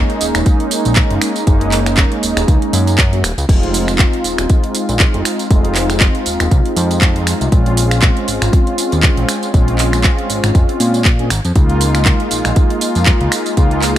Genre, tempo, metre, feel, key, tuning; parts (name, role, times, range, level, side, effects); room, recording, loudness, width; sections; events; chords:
nu-disco, nu disco; 119 BPM; 4/4; swing 56% on 16ths; A4 = 442 Hz
mellow synth brass; accompaniment; 0.0-14.0 s; Ab3 to Ab4; -18 LUFS; equal; chorus, sidechain pumping, dub echo
fat analog bass; bass; 0.0-14.0 s; Eb1 to Bb2; -17 LUFS; equal
house drum kit; drums; 0.1-14.0 s; crash cymbal, finger snaps, handclaps, hi-hat, tambourine; -18 LUFS; right 1 dB
electronic kick drum; drums; 0.5-13.7 s; -12 LUFS; equal
digital ambience; -11 LUFS; side -12 dB against mid
0.0-14.0 A section
0.0 Gb6; 3.5 Fm7; 7.5 Bbm9; 11.6 Db69